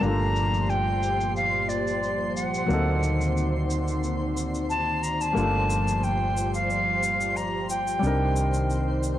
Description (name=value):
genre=sunset chillout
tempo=90 BPM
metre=4/4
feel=straight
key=G minor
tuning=A4 = 440 Hz
part: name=silver concert flute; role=melody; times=0.0-9.0 s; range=D5 to Bb5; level=-27 LUFS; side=left 1 dB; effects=tape echo
part: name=warm concert grand piano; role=accompaniment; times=0.0-9.2 s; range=F#3 to Bb4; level=-31 LUFS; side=left 2 dB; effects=auto-pan, low-pass filter
part: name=lush unison pad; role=sustained chords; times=0.0-9.2 s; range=Bb2 to D5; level=-30 LUFS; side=equal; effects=chorus
part: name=hollow-body short-scale fingered electric bass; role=bass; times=0.0-9.2 s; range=G1 to D2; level=-28 LUFS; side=equal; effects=transformer saturation
part: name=shaker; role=drums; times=0.0-9.2 s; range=none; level=-39 LUFS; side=left 1 dB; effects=low-pass filter on perc, low-pass filter on room
part: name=twinkling granular texture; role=texture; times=0.0-9.2 s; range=C5 to C6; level=-37 LUFS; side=left 1 dB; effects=built-in reverb
room=light reverb, digital ambience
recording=dry, gritty hardware recording, cassette tape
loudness=-23 LUFS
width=side -12 dB against mid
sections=0.0-9.2 A section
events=none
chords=0.0 Gm7; 2.7 D7b9b13; 5.4 Gm7; 8.0 Cm9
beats=| 0.03 0.69 1.36 2.02 | 2.69 3.36 4.03 4.69 | 5.36 6.03 6.69 7.36 | 8.03 8.69